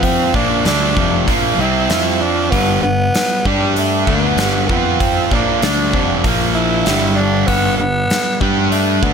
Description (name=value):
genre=classic rock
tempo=97 BPM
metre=4/4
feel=straight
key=unclear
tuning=A4 = 435 Hz
part: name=growling tenor saxophone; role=melody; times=0.0-9.1 s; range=G3 to E4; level=-19 LUFS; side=equal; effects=none
part: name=distorted electric guitar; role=riff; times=0.0-9.1 s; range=F2 to G4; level=-19 LUFS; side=right 10 dB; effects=overdrive
part: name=sludgy distorted guitar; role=riff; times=0.0-9.1 s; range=F2 to G4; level=-20 LUFS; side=left 11 dB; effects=overdrive
part: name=growling fingered electric bass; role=bass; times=0.0-9.1 s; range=F1 to G2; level=-21 LUFS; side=equal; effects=overdrive
part: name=gated 80s drum kit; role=drums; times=0.0-9.1 s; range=hi-hat, kick drum, snare drum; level=-20 LUFS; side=equal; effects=none
room=little or no reverb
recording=none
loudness=-13 LUFS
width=side -6 dB against mid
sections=0.0-9.1 A section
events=none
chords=0.3 G5; 1.9 F5; 2.5 G; 4.7 F5; 5.3 Bbmaj9; 6.2 Bb5; 6.9 G